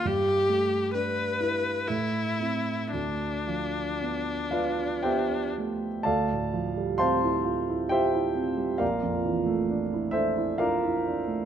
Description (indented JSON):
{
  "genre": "classical, impressionist duo for viola and grand piano",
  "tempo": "55-68 BPM",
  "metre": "3/4",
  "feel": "rubato",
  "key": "D minor",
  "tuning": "A4 = 440 Hz",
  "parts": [
    { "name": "clear viola", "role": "melody", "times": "0.0-5.5 s", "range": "D4 to B4", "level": "-28 LUFS", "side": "left 3 dB", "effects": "none" },
    { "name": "dark grand piano", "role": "accompaniment", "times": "0.0-11.5 s", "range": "Bb1 to C6", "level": "-26 LUFS", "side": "right 2 dB", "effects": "none" }
  ],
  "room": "moderate recital hall reverb, RT60 1.6 s",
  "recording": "close, detailed microphones",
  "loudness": "-25 LUFS",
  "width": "side -9 dB against mid",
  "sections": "0.0-6.1 A section; 6.1-11.5 B section",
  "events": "none",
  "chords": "0.1 G69; 1.9 Am; 2.9 Dm6; 6.1 Dm11; 8.8 Bbmaj7#11",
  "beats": "| 0.06 0.96 1.89 | 2.92 4.00 5.05 | 6.07 7.00 7.91 | 8.81 9.71 10.59"
}